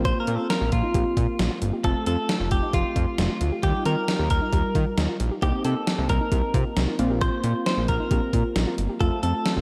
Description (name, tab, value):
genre	synth-pop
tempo	134 BPM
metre	4/4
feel	straight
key	unclear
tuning	A4 = 438 Hz
part	direct-recorded clean electric guitar	melody	0.0-9.6 s	F4 to C5	-31 LUFS	equal	analog chorus, tape echo
part	warm analog keys	accompaniment	0.0-9.6 s	G3 to F4	-32 LUFS	equal	chorus
part	soft round pluck	arpeggios	0.0-9.6 s	C4 to G4	-36 LUFS	equal	none
part	fat analog bass	bass	0.0-9.6 s	F1 to Eb3	-27 LUFS	equal	none
part	gated 80s digital drum machine	drums	0.1-9.6 s	hi-hat, kick drum, snare drum	-28 LUFS	equal	gated reverb, gated reverb snare, overdrive
room	moderate plate reverb, RT60 2.1 s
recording	dreamy mix soaked in reverb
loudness	-24 LUFS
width	mono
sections	0.0-9.6 A section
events	none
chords	0.0 Bbsus2; 1.8 F; 3.6 Ebadd9; 5.4 Cm7; 7.0 Bbsus2; 9.0 F